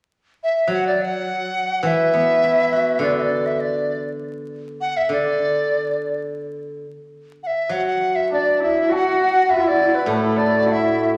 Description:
chinese traditional, Chinese chamber ensemble; 103 BPM; 2/4; rubato; D gong mode; A4 = 440 Hz
bright large dizi; melody; 0.4-11.1 s; A4 to A5; -22 LUFS; equal
steel-string zither; accompaniment; 0.7-11.2 s; A2 to F#4; -27 LUFS; equal
clear horsehead fiddle; second line; 8.3-11.1 s; A3 to F#4; -23 LUFS; equal
hammered dulcimer; second line; 8.3-11.2 s; A3 to F#4; -25 LUFS; equal
wet recital hall reverb, RT60 1.3 s; vinyl crackle; -20 LUFS; mono
0.0-8.9 A section; 8.9-11.2 B section
0.11 | 0.70 1.27 | 1.85 2.43 | 3.02 3.60 | 4.20 4.80 | 5.39 5.97 | 6.55 7.13 | 7.70 8.30 | 8.90 9.50 | 10.08 10.66

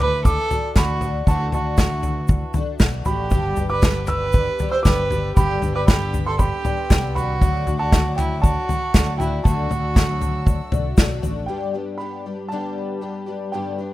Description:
indie folk with a building arrangement; 118 BPM; 4/4; straight; G major; A4 = 440 Hz
clear upright piano; melody; 0.0-13.9 s; G5 to E6; -29 LUFS; right 2 dB; tape echo
warm fiddle; second line; 0.0-10.9 s; E4 to C5; -25 LUFS; right 3 dB
picked twelve-string acoustic guitar; accompaniment; 0.0-13.9 s; G2 to G4; -29 LUFS; left 5 dB; analog chorus
fingered electric bass; bass; 0.0-11.5 s; G1 to D2; -25 LUFS; equal
unplugged drum kit; drums; 0.0-11.4 s; kick drum, snare drum, toms; -19 LUFS; equal
group handclap; percussion; 0.0-11.1 s; -35 LUFS; left 6 dB
tube shaker; percussion; 0.3-11.4 s; -42 LUFS; left 8 dB
warm studio string section; sustained chords; 3.3-11.5 s; A4 to E6; -42 LUFS; left 3 dB
fingerpicked steel-string acoustic guitar; accompaniment; 11.5-13.9 s; G2 to B4; -32 LUFS; left 2 dB
small room ambience; rough home demo mix; -18 LUFS; side -16 dB against mid
0.0-11.5 A section; 11.5-13.9 B section
0.0 Dadd9; 3.3 G; 7.4 D; 11.5 G
0.25 0.76 | 1.27 1.79 2.30 2.81 | 3.32 3.83 4.35 4.86 | 5.37 5.88 6.39 6.90 | 7.41 7.92 8.43 8.94 | 9.45 9.96 10.47 10.98 | 11.49 12.00 12.51 13.02 | 13.53

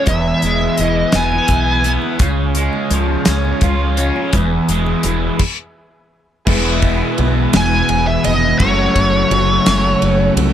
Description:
psychedelic rock; 56 BPM (dotted quarters); 6/8; straight; A4 = 441 Hz
bluesy overdriven lead guitar; melody; 0.0-1.9, 7.6-10.3 s; C#5 to G#5; -17 LUFS; equal; wah, distortion, analog delay
overdriven combo organ; sustained chords; 0.0-10.5 s; A3 to G#4; -26 LUFS; right 6 dB
overdriven electric guitar; riff; 0.0-10.5 s; E2 to F#4; -17 LUFS; equal; phaser
deep dub fingered electric bass; bass; 0.1-10.5 s; E1 to C#2; -18 LUFS; equal
damped 70s drum kit; drums; 0.1-10.5 s; crash cymbal, hi-hat, kick drum, ride cymbal, snare drum; -18 LUFS; equal
congas; percussion; 0.1-10.5 s; -28 LUFS; left 4 dB
light reverb, studio reverb; -13 LUFS; side -10 dB against mid
0.0-6.5 A section; 6.5-10.5 B section
stop 5.4-6.5
0.1 E; 2.2 C#; 4.3 E; 8.6 F#m7
| 0.09 1.16 | 2.22 3.29 | 4.35 5.42 | 6.48 7.54 | 8.61 9.67

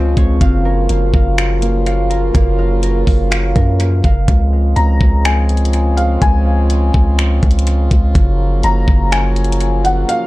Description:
hip hop, atmospheric cloud-rap; 124 BPM; 4/4; half-time; Db major; A4 = 440 Hz
mellow French horn section; sustained chords; 0.0-10.3 s; Db3 to F4; -21 LUFS; left 1 dB; sidechain pumping
concert harp; arpeggios; 0.0-7.0 s; Ab3 to F5; -23 LUFS; right 4 dB; tape echo
long sustained 808-style bass; bass; 0.0-10.0 s; Gb1 to Gb2; -14 LUFS; equal
smooth R&B drum kit; drums; 0.2-10.2 s; finger snaps, hi-hat, kick drum; -15 LUFS; equal; vintage 12-bit sampler grit
felt-muted upright piano; melody; 4.8-10.3 s; F5 to Bb5; -20 LUFS; left 2 dB; tape echo
small room ambience; echo-heavy mix; -11 LUFS; side -19 dB against mid
0.0-4.3 A section; 4.3-10.3 B section
kick muted 10.1
0.4 Gbmaj7; 4.3 Dbmaj7; 8.2 Gbmaj7
| 0.41 0.90 1.38 1.86 | 2.35 2.83 3.31 3.80 | 4.28 4.77 5.25 5.73 | 6.22 6.70 7.18 7.67 | 8.15 8.64 9.12 9.60 | 10.09

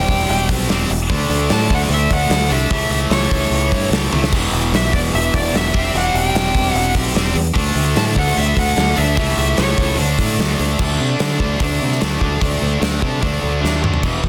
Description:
hard rock; 148 BPM; 4/4; straight; A4 = 435 Hz
nasal lead guitar with a parked wah; melody; 0.0-10.0 s; C#5 to A5; -24 LUFS; equal; overdrive, slapback echo
high-gain distorted guitar; riff; 0.0-14.3 s; E2 to D4; -22 LUFS; equal; distortion
fingered electric bass; bass; 0.0-14.3 s; E1 to D3; -22 LUFS; equal
gated 80s drum kit; drums; 0.1-14.3 s; crash cymbal, hi-hat, kick drum, snare drum, toms; -22 LUFS; equal
light reverb, small room ambience; dense, heavily limited modern master; -17 LUFS; mono
0.0-10.8 A section; 10.8-14.0 B section
drum fill 4.1, 13.6-14.0
0.0 C/E; 1.1 D; 2.7 A/C#; 4.3 E5; 5.7 C/E; 7.6 D; 9.2 A/C#; 10.0 D5
0.29 0.69 | 1.10 1.50 1.90 2.31 | 2.71 3.12 3.52 3.92 | 4.33 4.73 5.14 5.54 | 5.95 6.35 6.75 7.16 | 7.56 7.96 8.37 8.77 | 9.17 9.58 9.98 10.38 | 10.79 11.19 11.60 12.00 | 12.41 12.81 13.22 13.63 | 14.03

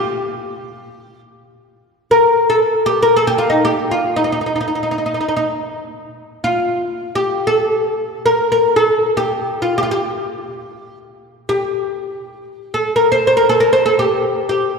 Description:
Turkish makam ensemble; free time; A4 = 441 Hz
oud; solo; 0.0-14.8 s; Eb4 to C5; -14 LUFS; equal
wet church reverb, RT60 2.6 s; recorded in a church or concert hall; -14 LUFS; side -4 dB against mid
0.0-14.8 A section
free time

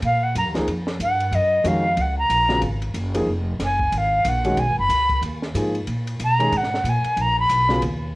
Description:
modal jazz; 185 BPM; 4/4; swing 61% on 8ths; A4 = 442 Hz
upright bass; bass; 0.0-8.1 s; F1 to Cb3; -24 LUFS; equal
compact cocktail drum kit; drums; 0.0-7.9 s; hi-hat, kick drum, ride cymbal, snare drum; -32 LUFS; equal; cassette tape
jazz flute; melody; 0.1-7.8 s; Eb5 to Cb6; -20 LUFS; equal; cassette tape
warm grand piano; accompaniment; 0.5-7.8 s; Db3 to Ab4; -24 LUFS; equal; cassette tape
light reverb, studio reverb; home recording on cassette; -18 LUFS; side -20 dB against mid
0.0-8.2 A section
flute solo 0.0-8.2
0.0 Ebm9; 2.6 Abm9
| 0.02 0.35 0.67 1.00 | 1.32 1.65 1.98 2.30 | 2.62 2.95 3.28 3.60 | 3.93 4.25 4.58 4.90 | 5.23 5.55 5.88 6.20 | 6.53 6.85 7.18 7.50 | 7.83

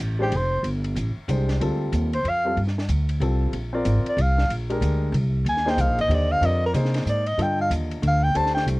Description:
modal jazz; 187 BPM; 3/4; swing 63% on 8ths; A4 = 440 Hz
upright bass; bass; 0.0-8.8 s; F1 to C3; -23 LUFS; equal
warm soprano saxophone; melody; 0.2-8.7 s; G4 to A5; -23 LUFS; equal; cassette tape
warm baby grand piano; accompaniment; 0.2-8.8 s; D3 to Eb5; -28 LUFS; left 1 dB
compact cocktail drum kit; drums; 0.3-8.8 s; hi-hat, ride cymbal, snare drum; -36 LUFS; equal; cassette tape
light reverb; home recording on cassette; -20 LUFS; side -21 dB against mid
0.0-8.8 A section
soprano saxophone solo 0.0-8.8
0.0 G9sus4; 3.5 Bb9sus4; 7.4 G9sus4
0.00 0.32 | 0.64 0.96 1.28 | 1.61 1.93 2.25 | 2.57 2.89 3.21 | 3.53 3.86 4.18 | 4.50 4.82 5.14 | 5.46 5.78 6.10 | 6.42 6.74 7.06 | 7.38 7.71 8.03 | 8.35 8.67

